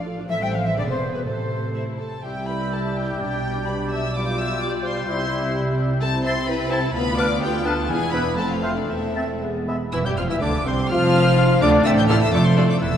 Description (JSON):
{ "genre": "quick classical-period movement for symphony orchestra", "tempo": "113-131 BPM", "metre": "2/4", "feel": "rubato", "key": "C major", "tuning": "A4 = 440 Hz", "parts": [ { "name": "warm chamber violin section", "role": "melody", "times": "0.0-13.0 s", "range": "A4 to G6", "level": "-30 LUFS", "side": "left 3 dB", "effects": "none" }, { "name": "flute section", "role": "second line", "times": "0.0-13.0 s", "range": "B4 to A6", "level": "-29 LUFS", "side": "left 2 dB", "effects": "none" }, { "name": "warm chamber violin section", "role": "second line", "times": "0.0-12.7 s", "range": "C4 to G5", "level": "-32 LUFS", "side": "left 4 dB", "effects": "none" }, { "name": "warm chamber viola section", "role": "accompaniment", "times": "0.0-12.7 s", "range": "G3 to A4", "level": "-29 LUFS", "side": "right 2 dB", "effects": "none" }, { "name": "dark chamber cello section", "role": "bass", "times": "0.0-13.0 s", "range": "C2 to G3", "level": "-26 LUFS", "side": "right 2 dB", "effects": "none" }, { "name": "warm chamber double bass section", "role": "bass", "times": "0.0-13.0 s", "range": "E1 to D2", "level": "-26 LUFS", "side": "right 2 dB", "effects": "none" }, { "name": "warm clarinet", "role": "second line", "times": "2.2-12.9 s", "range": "B3 to G4", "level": "-30 LUFS", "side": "left 2 dB", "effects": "none" }, { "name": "warm oboe", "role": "second line", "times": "2.2-12.9 s", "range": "A4 to G5", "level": "-32 LUFS", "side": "equal", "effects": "none" }, { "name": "warm bassoon", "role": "accompaniment", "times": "2.2-12.9 s", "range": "C3 to C4", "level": "-28 LUFS", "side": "equal", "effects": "none" }, { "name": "warm French horn section", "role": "sustained chords", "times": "2.2-13.0 s", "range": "C3 to A4", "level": "-30 LUFS", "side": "left 3 dB", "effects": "none" } ], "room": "wet concert hall reverb, RT60 2.6 s", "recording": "dark, warm production", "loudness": "-19 LUFS", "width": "side -9 dB against mid", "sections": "0.0-2.2 A section; 2.2-9.9 B section; 9.9-13.0 C section", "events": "none", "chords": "0.3 Am; 0.8 E; 1.3 Am; 2.2 C; 3.2 G/B; 4.2 G7/B; 5.1 C; 6.0 Am/C; 6.9 Bdim/D; 7.9 E; 8.4 F; 8.9 Am/E; 9.4 E; 9.9 Dm11/E; 10.9 Dm/F; 11.9 Am; 12.3 Dm/F" }